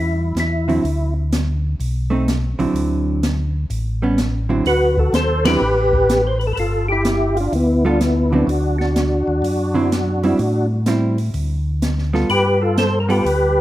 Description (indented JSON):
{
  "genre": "soul jazz organ trio",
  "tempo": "126 BPM",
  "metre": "4/4",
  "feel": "swing 67% on 8ths",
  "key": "D mixolydian",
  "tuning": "A4 = 440 Hz",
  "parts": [
    { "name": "percussive tonewheel organ", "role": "melody", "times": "0.0-1.1, 4.7-13.6 s", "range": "B3 to C5", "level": "-18 LUFS", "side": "equal", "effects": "slow rotary speaker, chorus vibrato" },
    { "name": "mellow tonewheel organ", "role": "bass", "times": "0.0-13.6 s", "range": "G1 to A2", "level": "-20 LUFS", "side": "equal", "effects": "slow rotary speaker" },
    { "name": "open jazz drum kit", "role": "drums", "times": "0.4-13.4 s", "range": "hi-hat, kick drum, ride cymbal, snare drum", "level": "-24 LUFS", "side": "equal", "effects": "none" },
    { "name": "vintage hollow-body jazz guitar", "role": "accompaniment", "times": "0.7-13.2 s", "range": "D3 to A4", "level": "-21 LUFS", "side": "right 2 dB", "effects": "none" }
  ],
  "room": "light reverb",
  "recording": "none",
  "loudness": "-16 LUFS",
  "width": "side -14 dB against mid",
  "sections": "0.0-4.7 A section; 4.7-13.6 A section",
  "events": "band accent 5.4",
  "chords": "0.0 N.C.; 1.8 B7b9; 2.8 D9; 3.7 A9; 4.7 D7; 6.6 G9; 8.5 D9; 10.4 Am7; 11.3 G9",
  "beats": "0.37 | 0.84 1.32 1.80 2.28 | 2.75 3.23 3.71 4.19 | 4.67 5.14 5.62 6.10 | 6.57 7.05 7.53 8.01 | 8.48 8.96 9.44 9.91 | 10.39 10.87 11.35 11.82 | 12.30 12.78 13.25"
}